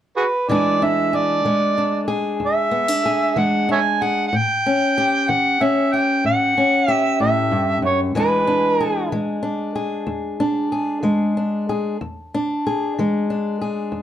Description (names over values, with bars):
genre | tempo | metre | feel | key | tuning
acoustic country blues, solo or duo | 63 BPM (dotted quarters) | 12/8 | straight | E mixolydian | A4 = 440 Hz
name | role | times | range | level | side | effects
overdriven harmonica | melody | 0.2-9.1 s | F#4 to G#5 | -18 LUFS | right 2 dB | plate reverb
fingerpicked steel-string acoustic guitar | accompaniment | 0.5-14.0 s | E2 to G#4 | -20 LUFS | left 2 dB | none
room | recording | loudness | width
moderate small room reverb, RT60 0.5 s | none | -17 LUFS | side -10 dB against mid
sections
0.5-14.0 A section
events
none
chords
0.5 E7; 4.3 A7; 8.2 E7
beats
| 0.49 1.45 2.41 3.37 | 4.33 5.29 6.24 7.20 | 8.16 9.12 10.08 11.04 | 12.00 12.96 13.92